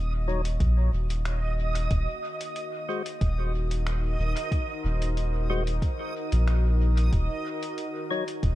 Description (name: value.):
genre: ambient dub.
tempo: 92 BPM.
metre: 4/4.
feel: swing 53% on 16ths.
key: unclear.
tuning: A4 = 441 Hz.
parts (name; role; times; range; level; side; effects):
warbly tape-like pad; sustained chords; 0.0-8.6 s; Eb3 to F5; -37 LUFS; left 2 dB; chorus, built-in reverb.
soft dub sub bass; bass; 0.0-8.6 s; Eb1 to Bb1; -24 LUFS; equal; tube saturation.
backwards swelling texture; texture; 0.0-8.6 s; Eb5; -36 LUFS; right 3 dB; built-in reverb.
percussive tonewheel organ; stabs; 0.3-8.2 s; Gb3 to Db5; -34 LUFS; left 4 dB; overdrive, slow rotary speaker, low-pass filter, dub echo.
lo-fi sampler-style drum kit; drums; 0.5-8.6 s; finger snaps, hi-hat; -41 LUFS; left 1 dB; dub echo.
electronic kick drum; drums; 0.6-8.6 s; none; -27 LUFS; equal; none.
room: digital ambience.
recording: echo-heavy mix.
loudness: -25 LUFS.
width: side -15 dB against mid.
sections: 0.0-8.6 A section.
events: fade-in on ambient pad 0.0-8.6; filter sweep on tonewheel organ 0.0-8.6.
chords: 0.0 Ebm7; 1.9 Ab7/Eb (rootless); 7.1 Ebm7.